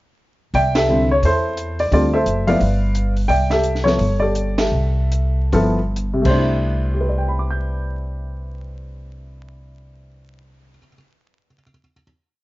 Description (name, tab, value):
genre	jazz piano trio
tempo	122-175 BPM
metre	4/4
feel	swing 62% on 8ths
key	C major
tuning	A4 = 441 Hz
part	dark baby grand piano	melody	0.5-12.0 s	C3 to G6	-19 LUFS	equal	none
part	upright bass	bass	0.5-10.8 s	F#1 to E2	-20 LUFS	equal	none
part	compact cocktail drum kit	drums	0.5-6.3 s	crash cymbal, hi-hat, kick drum, ride cymbal, snare drum	-26 LUFS	right 1 dB	none
room	light reverb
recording	vinyl crackle, nothing above 7.5 kHz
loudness	-16 LUFS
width	side -18 dB against mid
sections	0.5-6.4 A section; 6.4-10.4 final chord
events	band accent 0.7, 4.5; slowing down 3.3-6.4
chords	0.5 C69; 1.9 Dm9; 2.6 G7; 3.3 C69